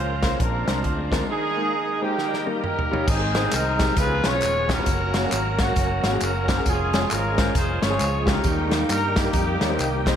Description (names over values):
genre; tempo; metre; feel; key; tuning
uptempo gospel; 134 BPM; 4/4; swing 62% on 8ths; unclear; A4 = 439 Hz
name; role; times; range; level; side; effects
warm horn section; melody; 0.0-10.1 s; Bb3 to Db5; -25 LUFS; equal; diffuse ambient delay
warm upright piano; accompaniment; 0.0-10.2 s; Ab2 to G5; -28 LUFS; left 2 dB; analog chorus
bright tonewheel organ; sustained chords; 0.0-10.2 s; Eb3 to Bb4; -30 LUFS; right 3 dB; fast rotary speaker, overdrive, chorus vibrato
fingered electric bass; bass; 0.0-10.2 s; Eb1 to G2; -27 LUFS; equal; none
natural country drum kit; drums; 0.2-10.1 s; crash cymbal, hi-hat, kick drum, snare drum, toms; -25 LUFS; equal; none
tambourine and handclaps; percussion; 3.1-10.1 s; none; -34 LUFS; equal; none
room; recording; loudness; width
moderate plate reverb, RT60 2.5 s; dreamy mix soaked in reverb; -20 LUFS; side -9 dB against mid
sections
0.0-3.1 A section; 3.1-10.2 B section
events
drum fill 2.2-3.1; upright piano fill 9.6-10.2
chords
0.4 Bb9; 1.3 Ebsus4; 2.2 Eb; 3.1 Ab; 4.0 Db7; 4.9 Gb; 6.7 Db/F; 8.4 Eb